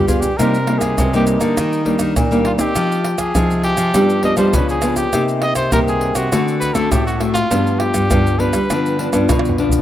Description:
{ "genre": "samba and choro", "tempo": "101 BPM", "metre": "4/4", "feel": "straight", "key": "C minor", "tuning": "A4 = 440 Hz", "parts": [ { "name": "clear trumpet", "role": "melody", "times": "0.0-9.6 s", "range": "Eb4 to Eb5", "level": "-21 LUFS", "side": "equal", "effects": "none" }, { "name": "nylon-string guitar", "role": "accompaniment", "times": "0.0-9.8 s", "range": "G2 to Ab4", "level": "-18 LUFS", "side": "left 2 dB", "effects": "none" }, { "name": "nylon-string guitar", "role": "bass", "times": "0.0-9.8 s", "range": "G2 to G3", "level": "-19 LUFS", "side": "right 1 dB", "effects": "none" }, { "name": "maracas, surdo, pandeiro and tamborim", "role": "percussion", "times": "0.1-9.8 s", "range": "none", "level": "-21 LUFS", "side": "right 1 dB", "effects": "none" } ], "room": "light reverb, small room ambience", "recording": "rough home demo mix", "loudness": "-14 LUFS", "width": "side -12 dB against mid", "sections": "0.0-9.8 A section", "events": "drum fill 0.0-0.4, 9.3-9.8", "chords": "0.4 Cm7; 1.6 Ebmaj7; 2.8 Fm7; 3.9 G7; 5.1 Cm7; 6.3 D7; 7.5 G7", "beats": "| 0.39 0.98 1.57 2.17 | 2.76 3.35 3.94 4.54 | 5.13 5.73 6.32 6.92 | 7.51 8.10 8.70 9.29" }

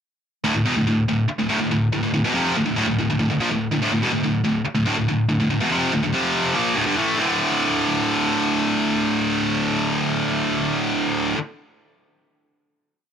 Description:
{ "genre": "metal", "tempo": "143 BPM", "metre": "4/4", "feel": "straight", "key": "D minor", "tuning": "A4 = 440 Hz", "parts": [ { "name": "high-gain distorted guitar", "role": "solo", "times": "0.4-11.4 s", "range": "D2 to Bb3", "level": "-18 LUFS", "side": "equal", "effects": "distortion" } ], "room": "digital ambience", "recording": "dry, close 1970s-style studio recording", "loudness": "-19 LUFS", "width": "side -8 dB against mid", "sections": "0.4-7.2 riff; 7.2-10.5 final chord", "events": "none", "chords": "0.4 Dm; 6.1 F5; 6.5 Dm; 7.2 D5", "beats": "| 0.44 0.86 1.29 1.71 | 2.13 2.55 2.98 3.40 | 3.82 4.24 4.66 5.08 | 5.50 5.92 6.34 6.76 | 7.18 7.60 8.02 8.43 | 8.85 9.27 9.69 10.11" }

